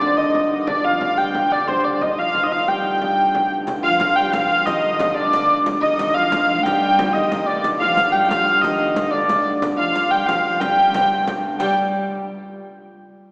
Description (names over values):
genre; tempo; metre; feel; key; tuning
medieval dance; 121 BPM (dotted quarters); 6/8; straight; unclear; A4 = 440 Hz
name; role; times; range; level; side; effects
dark hurdy-gurdy; melody; 0.0-11.7 s; C5 to G5; -20 LUFS; equal; none
concert harp; second line; 0.0-12.8 s; C4 to A4; -29 LUFS; equal; none
warm viola da gamba; second line; 0.0-11.8 s; C3 to A3; -32 LUFS; equal; none
hand-pumped harmonium; drone; 0.0-11.6 s; G2 to D3; -32 LUFS; equal; none
frame drum; percussion; 0.0-11.8 s; none; -34 LUFS; equal; none
riq; percussion; 3.7-11.8 s; none; -36 LUFS; equal; none
room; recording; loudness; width
wet church reverb, RT60 2.9 s; recorded in a church or concert hall, small speaker sound; -19 LUFS; mono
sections
0.0-3.7 A section; 3.7-11.6 B section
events
none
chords
none